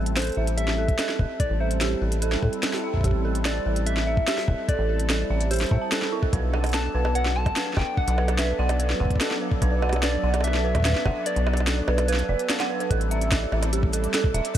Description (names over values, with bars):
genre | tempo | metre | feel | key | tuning
IDM | 146 BPM | 4/4 | straight | A dorian | A4 = 440 Hz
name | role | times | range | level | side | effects
warm analog pad | sustained chords | 0.0-14.6 s | F#3 to A4 | -32 LUFS | equal | chorus, sidechain pumping
deep acid bass | bass | 0.0-14.4 s | E1 to A2 | -24 LUFS | equal | none
organic electronic drum kit | drums | 0.1-14.6 s | bongos, hi-hat, shaker, snare drum | -29 LUFS | equal | none
soft struck synth lead | melody | 0.2-12.7 s | B4 to A5 | -31 LUFS | left 2 dB | chorus, tape echo
dark detuned synth bell | arpeggios | 0.2-14.6 s | E4 to A5 | -30 LUFS | right 5 dB | chorus, phaser, ping-pong delay
electronic kick drum | drums | 0.9-14.6 s | none | -23 LUFS | equal | none
flickering grainy texture | texture | 7.2-14.6 s | D5 | -39 LUFS | left 4 dB | none
room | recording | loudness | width
little or no reverb | none | -21 LUFS | side -11 dB against mid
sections
0.0-12.9 A section; 12.9-14.6 B section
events
kick drops out 11.3-12.9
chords
0.0 Am7; 6.3 Bm7; 12.9 Am7